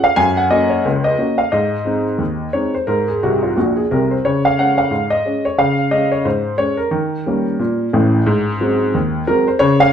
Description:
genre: ragtime piano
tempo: 89 BPM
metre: 2/4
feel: swing 58% on 16ths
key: unclear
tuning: A4 = 440 Hz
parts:
  - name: warm upright piano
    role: solo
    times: 0.0-9.9 s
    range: A1 to Ab5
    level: -14 LUFS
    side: equal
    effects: none
room: wet large studio reverb, RT60 0.8 s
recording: band playing live in one room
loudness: -14 LUFS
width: side -8 dB against mid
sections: 0.0-9.9 A section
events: upright piano fill 3.2-4.2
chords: 0.2 Gb; 1.5 Ab; 4.2 Db5; 6.9 Eb7; 8.3 Ab7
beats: | 0.18 0.85 | 1.53 2.20 | 2.88 3.56 | 4.23 4.91 | 5.58 6.25 | 6.92 7.60 | 8.27 8.94 | 9.61

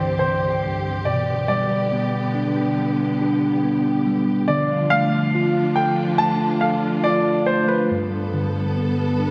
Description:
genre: pop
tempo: 70 BPM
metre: 4/4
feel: straight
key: unclear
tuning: A4 = 440 Hz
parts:
  - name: clear baby grand piano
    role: melody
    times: 0.0-9.3 s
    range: B4 to A5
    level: -25 LUFS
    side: equal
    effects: none
  - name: tine electric piano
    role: accompaniment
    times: 0.0-9.3 s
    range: C2 to A4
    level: -23 LUFS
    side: equal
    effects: none
  - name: warm studio string section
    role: sustained chords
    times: 0.0-9.3 s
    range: D3 to A4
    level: -29 LUFS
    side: equal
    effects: none
room: wet church reverb, RT60 3.3 s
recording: recorded in a church or concert hall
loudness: -21 LUFS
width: mono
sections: 0.0-9.3 A section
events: none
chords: 0.0 C; 1.1 G/B; 4.5 Dm; 7.9 Gadd9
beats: 0.20 | 1.06 1.92 2.77 3.63 | 4.49 5.35 6.20 7.06 | 7.92 8.78

